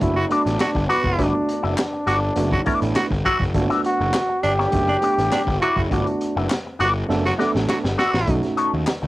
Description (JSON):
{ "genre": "funk", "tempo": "102 BPM", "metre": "4/4", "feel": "straight", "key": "unclear", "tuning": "A4 = 440 Hz", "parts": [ { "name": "warm trombone", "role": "melody", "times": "0.0-6.5 s", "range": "B3 to G4", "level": "-23 LUFS", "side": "equal", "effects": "cassette tape, plate reverb" }, { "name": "electric guitar with an envelope filter", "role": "accompaniment", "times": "0.0-9.1 s", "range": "B3 to E5", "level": "-24 LUFS", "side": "left 4 dB", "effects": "wah, cassette tape, plate reverb" }, { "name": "barky tine electric piano", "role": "stabs", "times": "0.0-8.9 s", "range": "A3 to A4", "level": "-25 LUFS", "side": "right 3 dB", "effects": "overdrive, cassette tape, plate reverb" }, { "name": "fuzz picked electric bass", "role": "bass", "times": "0.0-9.1 s", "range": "F#1 to D#2", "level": "-24 LUFS", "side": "equal", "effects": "overdrive" }, { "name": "crunchy breakbeat drum kit", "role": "drums", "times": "0.0-9.0 s", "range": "hi-hat, kick drum, snare drum", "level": "-26 LUFS", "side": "equal", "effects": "cassette tape" }, { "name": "growling tenor saxophone", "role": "second line", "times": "0.2-8.4 s", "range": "D4 to F#4", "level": "-22 LUFS", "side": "right 2 dB", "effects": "cassette tape, plate reverb" }, { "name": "group handclap", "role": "percussion", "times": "0.6-9.0 s", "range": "none", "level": "-30 LUFS", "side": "left 3 dB", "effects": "none" } ], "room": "light reverb", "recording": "home recording on cassette", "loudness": "-18 LUFS", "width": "side -17 dB against mid", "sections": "0.0-8.3 A section", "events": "drum fill 7.1-8.3", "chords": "0.0 Gmaj7; 8.3 B9", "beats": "0.01 0.59 | 1.19 1.77 2.37 2.96 | 3.55 4.14 4.73 5.32 | 5.91 6.50 7.09 7.68 | 8.28 8.87" }